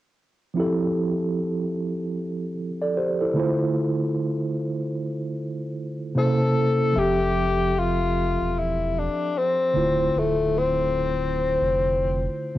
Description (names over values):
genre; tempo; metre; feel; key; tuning
lo-fi hip hop; 75 BPM; 4/4; swing 62% on 16ths; F major; A4 = 439 Hz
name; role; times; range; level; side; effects
mellow tine electric piano; accompaniment; 0.5-12.6 s; C3 to E5; -24 LUFS; right 1 dB; medium stereo tremolo, low-pass filter, cassette tape
breathy tenor saxophone; melody; 6.2-12.3 s; A3 to A4; -23 LUFS; left 3 dB; low-pass filter, cassette tape, plate reverb, analog delay
warm sub bass; bass; 7.0-12.3 s; D1 to F1; -29 LUFS; right 1 dB; none
room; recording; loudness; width
wet booth ambience, RT60 0.2 s; home recording on cassette; -21 LUFS; side -14 dB against mid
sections
0.6-7.0 A section; 7.0-12.6 B section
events
none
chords
0.6 Fmaj9; 3.4 Dm9; 6.2 C7b9; 7.0 Fmaj9; 9.8 Dm9